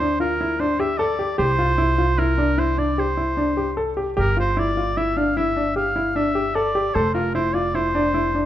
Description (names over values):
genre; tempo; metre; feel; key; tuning
contemporary instrumental, chamber music in an uneven meter; 151 BPM; 7/4; straight; G dorian; A4 = 440 Hz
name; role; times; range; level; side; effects
clear oboe; melody; 0.0-8.5 s; Bb4 to F5; -24 LUFS; right 1 dB; none
clear baby grand piano; arpeggios; 0.0-8.5 s; D4 to A4; -22 LUFS; left 1 dB; none
upright bass; bass; 0.0-8.5 s; F1 to D2; -26 LUFS; right 1 dB; none
room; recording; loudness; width
moderate recital hall reverb, RT60 1.5 s; none; -19 LUFS; side -12 dB against mid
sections
0.0-8.5 A section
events
none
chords
0.0 N.C.; 1.4 C; 4.2 G5; 7.0 F5